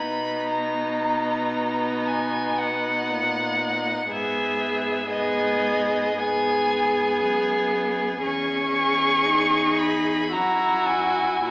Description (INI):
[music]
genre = classical, slow romantic movement for string quartet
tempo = 52-62 BPM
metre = 4/4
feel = rubato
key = B major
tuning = A4 = 438 Hz
[part]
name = clear violin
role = melody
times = 0.0-11.5 s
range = D#5 to C#6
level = -24 LUFS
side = left 1 dB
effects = none
[part]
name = rich violin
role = second line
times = 0.0-11.5 s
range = D#4 to G#4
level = -25 LUFS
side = equal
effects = none
[part]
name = clear viola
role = accompaniment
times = 0.0-11.5 s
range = B3 to E4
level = -27 LUFS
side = equal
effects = none
[part]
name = rich cello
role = bass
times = 0.0-11.5 s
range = E2 to B2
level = -33 LUFS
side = equal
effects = none
[sound]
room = wet recital hall reverb, RT60 1.5 s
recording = recorded in a church or concert hall, AM radio sound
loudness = -20 LUFS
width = side -26 dB against mid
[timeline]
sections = 0.0-11.5 A section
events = none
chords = 0.0 B; 4.1 G#m; 8.2 C#m/E; 10.3 F#7